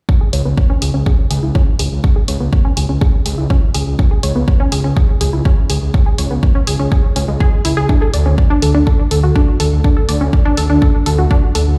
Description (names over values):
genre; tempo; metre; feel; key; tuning
melodic techno; 123 BPM; 4/4; straight; C# phrygian; A4 = 440 Hz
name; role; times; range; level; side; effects
unison pluck; arpeggios; 0.1-11.6 s; G#3 to D5; -22 LUFS; equal; sidechain pumping, delay
electronic kick drum; drums; 0.1-11.4 s; none; -14 LUFS; equal; none
swelling detuned saw bass; bass; 0.3-11.8 s; C#2 to D2; -18 LUFS; equal; tube saturation, sidechain pumping
electronic hi-hat; drums; 0.3-11.6 s; none; -27 LUFS; equal; none
room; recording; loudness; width
little or no reverb; played on a big sound system in a bare room, large studio reverb; -14 LUFS; mono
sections
0.1-11.8 A section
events
filter sweep on synth pluck 0.1-11.8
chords
0.1 C#5; 7.9 D5